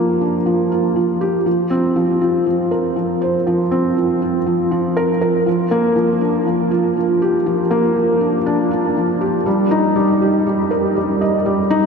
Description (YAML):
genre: electronica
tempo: 120 BPM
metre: 4/4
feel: straight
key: unclear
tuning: A4 = 440 Hz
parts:
  - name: felt-muted upright piano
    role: solo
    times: 0.0-11.9 s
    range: F3 to Eb5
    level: -15 LUFS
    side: equal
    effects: diffuse ambient delay
room: wet huge ambient reverb, RT60 7.8 s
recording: dreamy mix soaked in reverb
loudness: -15 LUFS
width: side -5 dB against mid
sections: 0.0-11.9 A section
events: build-up 0.0-11.9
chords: none